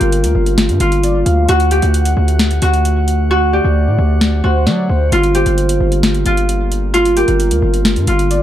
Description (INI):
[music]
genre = hip hop, trap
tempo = 132 BPM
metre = 4/4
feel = half-time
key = G minor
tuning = A4 = 440 Hz
[part]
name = Celtic harp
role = melody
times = 0.0-8.4 s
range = F4 to G4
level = -16 LUFS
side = equal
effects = tape echo
[part]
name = warm velvety synth lead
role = second line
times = 0.0-8.4 s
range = Bb4 to F#5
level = -24 LUFS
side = equal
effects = chorus, tape echo
[part]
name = pipe organ, flutes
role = sustained chords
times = 0.0-8.4 s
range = D3 to F#5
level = -24 LUFS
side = equal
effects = none
[part]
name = distorted 808-style bass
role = bass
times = 0.0-8.4 s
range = G1 to F#3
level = -14 LUFS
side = equal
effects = distortion
[part]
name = booming analog drum machine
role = drums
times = 0.0-8.4 s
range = hi-hat, snare drum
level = -19 LUFS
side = left 1 dB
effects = overdrive
[sound]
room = little or no reverb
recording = dark, warm production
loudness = -11 LUFS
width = side -11 dB against mid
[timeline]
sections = 0.0-8.4 A section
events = hi-hats muted 3.3-5.1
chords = 0.0 Gm7; 1.5 D; 5.1 Gm7